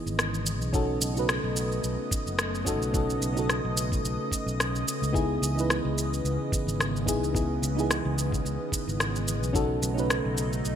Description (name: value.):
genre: sunset chillout.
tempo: 109 BPM.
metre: 4/4.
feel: swing 56% on 16ths.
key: C# minor.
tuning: A4 = 439 Hz.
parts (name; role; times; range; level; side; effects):
mellow FM electric piano; accompaniment; 0.0-10.8 s; B3 to B4; -31 LUFS; moving between left 3 dB and right 5 dB; chorus, auto-pan, digital delay.
lush unison pad; sustained chords; 0.0-10.8 s; C#3 to D#5; -32 LUFS; equal; chorus.
fretless electric bass; bass; 0.1-10.8 s; F#1 to C#2; -30 LUFS; equal; none.
electronic shaker and rim click; drums; 0.1-10.8 s; none; -31 LUFS; equal; none.
electronic kick drum; drums; 0.7-9.7 s; none; -30 LUFS; equal; none.
room: moderate plate reverb, RT60 3.1 s.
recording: bright 1980s-style digital production.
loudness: -25 LUFS.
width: side -9 dB against mid.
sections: 0.0-10.8 A section.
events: none.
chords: 0.0 C#m9; 0.7 B9; 5.1 C#m9; 9.6 B9.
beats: 0.19 | 0.74 1.29 1.84 2.39 | 2.94 3.50 4.04 4.59 | 5.15 5.70 6.25 6.80 | 7.35 7.90 8.45 9.00 | 9.55 10.10 10.65.